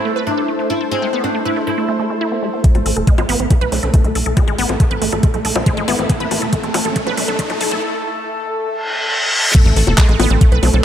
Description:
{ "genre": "psychedelic trance", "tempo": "139 BPM", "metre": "4/4", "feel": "straight", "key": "A minor", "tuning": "A4 = 441 Hz", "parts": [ { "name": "oud", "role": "melody", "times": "0.0-2.6 s", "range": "C4 to E4", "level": "-21 LUFS", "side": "left 2 dB", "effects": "phaser, sidechain pumping, ping-pong delay" }, { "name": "bubbling stepped-filter texture", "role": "sustained chords", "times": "0.0-10.8 s", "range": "A3 to C5", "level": "-24 LUFS", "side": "equal", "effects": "chorus, built-in reverb, sidechain pumping" }, { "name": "granular cloud pad", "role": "texture", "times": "0.0-10.8 s", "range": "A3 to A5", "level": "-28 LUFS", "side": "right 2 dB", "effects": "built-in reverb, sidechain pumping" }, { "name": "wide unison pluck", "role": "riff", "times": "0.1-10.8 s", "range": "G#3 to B4", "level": "-22 LUFS", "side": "moving between left 5 dB and right 7 dB", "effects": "auto-pan, sidechain pumping, dub echo" }, { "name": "electronic kick drum", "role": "drums", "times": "2.6-10.5 s", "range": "none", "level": "-12 LUFS", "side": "equal", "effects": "studio reverb" }, { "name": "garage drum kit", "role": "drums", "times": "2.6-10.8 s", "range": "bongos, crash cymbal, handclaps, hi-hat", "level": "-21 LUFS", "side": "left 3 dB", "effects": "high-pass filter on hats, studio reverb, high-pass filter on perc, high-pass filter on cymbals, high-pass filter on snare" }, { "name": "riser, reverse cymbal and impact", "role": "sound effects", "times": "4.3-10.8 s", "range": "none", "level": "-22 LUFS", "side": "equal", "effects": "none" }, { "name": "tight sequencer bass", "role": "bass", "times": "2.8-10.8 s", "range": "E1 to B1", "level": "-19 LUFS", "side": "equal", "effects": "none" }, { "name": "formant-sweep wobble bass", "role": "second line", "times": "3.7-6.5, 10.6-10.8 s", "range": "A3 to E4", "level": "-28 LUFS", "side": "right 4 dB", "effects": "chorus, sidechain pumping, high-pass filter, digital delay" } ], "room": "light reverb, digital ambience", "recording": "high-pass filter", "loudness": "-14 LUFS", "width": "side -10 dB against mid", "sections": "0.0-2.6 A section; 2.6-9.5 B section; 9.5-10.8 C section", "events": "filter sweep on synth arpeggio sound 0.0-2.6, 2.6-9.5; build-up 2.6-9.5; filter sweep on synth texture 2.6-9.5; filter sweep 2.6-9.5; riser 4.3-7.8; drum fill 6.1-7.8; reverse cymbal 8.8-9.5; drop 9.5-10.8; impact 9.5-10.8", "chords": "0.0 A5", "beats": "0.05 0.48 | 0.92 1.35 1.78 2.21 | 2.64 3.07 3.50 3.94 | 4.37 4.80 5.23 5.66 | 6.09 6.53 6.96 7.39 | 7.82 8.25 8.69 9.12 | 9.55 9.98 10.41 10.84" }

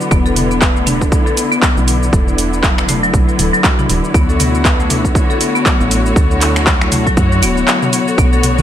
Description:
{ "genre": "afro house", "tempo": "119 BPM", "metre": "4/4", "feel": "swing 58% on 16ths", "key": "unclear", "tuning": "A4 = 442 Hz", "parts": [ { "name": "muted studio string section", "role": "sustained chords", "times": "0.0-8.6 s", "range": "D3 to C#5", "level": "-19 LUFS", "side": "equal", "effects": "sidechain pumping" }, { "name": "house drum kit", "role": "drums", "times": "0.0-8.6 s", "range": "finger snaps, handclaps, hi-hat, shaker, toms", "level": "-17 LUFS", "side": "equal", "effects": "overdrive" }, { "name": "marimba with hard mallets", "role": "arpeggios", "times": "0.1-8.6 s", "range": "F#3 to B4", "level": "-18 LUFS", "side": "left 3 dB", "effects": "sidechain pumping, ping-pong delay" }, { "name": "woody FM bass", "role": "bass", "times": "0.1-8.6 s", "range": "D1 to F#2", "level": "-18 LUFS", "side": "equal", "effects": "sidechain pumping" }, { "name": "electronic kick drum", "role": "drums", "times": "0.1-8.3 s", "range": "none", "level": "-14 LUFS", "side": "equal", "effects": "overdrive" }, { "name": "congas", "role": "percussion", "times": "8.6 s", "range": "none", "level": "-13 LUFS", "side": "right 3 dB", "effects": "none" } ], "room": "little or no reverb", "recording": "none", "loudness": "-11 LUFS", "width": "side -10 dB against mid", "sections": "0.0-8.6 A section", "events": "none", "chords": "0.1 E5; 4.1 Dmaj9", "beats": "| 0.11 0.62 1.12 1.62 | 2.13 2.63 3.14 3.64 | 4.15 4.65 5.15 5.66 | 6.16 6.67 7.17 7.67 | 8.18" }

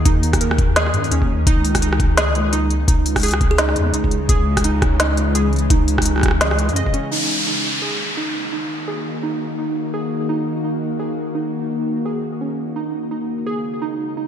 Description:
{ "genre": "half-time drum and bass", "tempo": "170 BPM", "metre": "4/4", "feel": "swing 58% on 16ths, half-time", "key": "Eb phrygian", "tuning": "A4 = 440 Hz", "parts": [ { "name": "bowed-like drone", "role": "sustained chords", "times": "0.0-14.3 s", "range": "Db3 to Ab4", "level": "-25 LUFS", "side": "left 2 dB", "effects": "built-in reverb, sidechain pumping" }, { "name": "deep soft wobble bass", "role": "bass", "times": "0.0-6.9 s", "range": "Db2 to Gb2", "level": "-19 LUFS", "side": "equal", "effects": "chorus" }, { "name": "warbly dusty pluck", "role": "arpeggios", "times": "0.1-14.3 s", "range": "Db4 to Eb5", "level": "-25 LUFS", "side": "right 4 dB", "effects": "analog chorus, ping-pong delay" }, { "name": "electronic kick drum", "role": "drums", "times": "0.1-6.9 s", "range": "none", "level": "-18 LUFS", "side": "equal", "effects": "none" }, { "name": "organic electronic drum kit", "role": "drums", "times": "0.1-7.0 s", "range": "hi-hat, rim click, snare drum", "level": "-21 LUFS", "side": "equal", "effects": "low-pass filter on snare, low-pass filter on hats, low-pass filter on cymbals, low-pass filter on room, gated reverb" }, { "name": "kalimba", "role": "melody", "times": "3.5-3.6 s", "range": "Ab4", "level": "-28 LUFS", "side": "right 3 dB", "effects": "digital delay" }, { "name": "downlifter", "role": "sound effects", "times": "7.1-9.9 s", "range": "none", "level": "-23 LUFS", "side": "equal", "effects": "none" } ], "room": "moderate lush hall reverb, RT60 2.0 s", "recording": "bright 1980s-style digital production", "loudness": "-17 LUFS", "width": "side -9 dB against mid", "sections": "0.0-7.1 A section; 7.1-14.3 B section", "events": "drop 0.0-7.1", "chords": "0.0 Eb5; 1.5 Dbm; 7.1 Ebm; 12.8 Dbm", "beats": "| 0.06 0.41 0.76 1.11 | 1.47 1.82 2.17 2.53 | 2.88 3.23 3.58 3.94 | 4.29 4.64 5.00 5.35 | 5.70 6.05 6.41 6.76 | 7.11 7.47 7.82 8.17 | 8.53 8.88 9.23 9.58 | 9.94 10.29 10.64 11.00 | 11.35 11.70 12.05 12.41 | 12.76 13.11 13.47 13.82 | 14.17" }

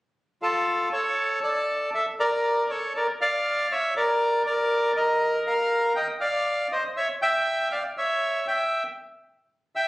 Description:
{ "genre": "tango", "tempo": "119 BPM", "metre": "4/4", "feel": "rubato", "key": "D harmonic minor", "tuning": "A4 = 441 Hz", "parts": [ { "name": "bandoneon", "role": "solo", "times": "0.4-9.9 s", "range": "F4 to G5", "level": "-22 LUFS", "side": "equal", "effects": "none" } ], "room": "moderate large studio reverb, RT60 0.8 s", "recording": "recorded on a phone in the room, club reverb", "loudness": "-22 LUFS", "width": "side -18 dB against mid", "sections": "0.9-9.9 A section", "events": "none", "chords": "0.0 N.C.; 0.9 D5; 2.9 Bb; 5.0 Ebsus2; 7.0 C#dim", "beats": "0.42 | 0.92 1.43 1.94 2.44 | 2.94 3.45 3.95 4.45 | 4.96 5.46 5.96 6.46 | 6.97 7.47 7.98 8.48 | 8.99 9.49" }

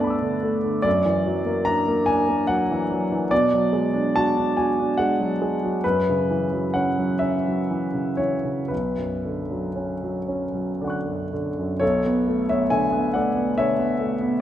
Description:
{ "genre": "classical, impressionist solo piano", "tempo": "37-50 BPM (dotted quarters)", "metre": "6/8", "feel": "rubato", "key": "B dorian", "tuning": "A4 = 439 Hz", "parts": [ { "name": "clear concert grand piano", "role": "solo", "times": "0.0-14.4 s", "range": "B1 to F#6", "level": "-20 LUFS", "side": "equal", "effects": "none" } ], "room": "wet recital hall reverb, RT60 1.6 s", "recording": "none", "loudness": "-20 LUFS", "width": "side -11 dB against mid", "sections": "0.0-11.8 A section; 11.8-14.4 A section", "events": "none", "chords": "0.0 G69; 0.9 F#aug7; 3.3 Bm6; 5.8 F#7sus4; 8.7 Bmadd9; 11.8 Bm7", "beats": "| 0.86 2.10 | 3.32 4.55 | 5.83 7.21 | 8.71 10.29 | 11.82 13.16" }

